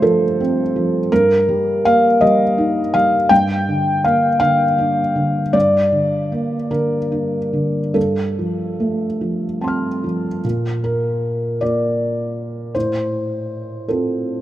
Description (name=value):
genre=neoclassical minimalist piano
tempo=47-55 BPM (dotted quarters)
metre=6/8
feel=rubato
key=G minor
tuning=A4 = 441 Hz
part: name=felt-muted upright piano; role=solo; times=0.0-14.4 s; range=G2 to F6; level=-16 LUFS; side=equal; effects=none
room=moderate plate reverb, RT60 3.7 s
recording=rough home demo mix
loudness=-16 LUFS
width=side -13 dB against mid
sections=0.0-10.4 A section; 10.4-14.4 B section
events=none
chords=0.0 F/G; 1.1 Eb/G; 3.3 Gm; 8.0 F/G; 10.4 Bb; 12.7 F/A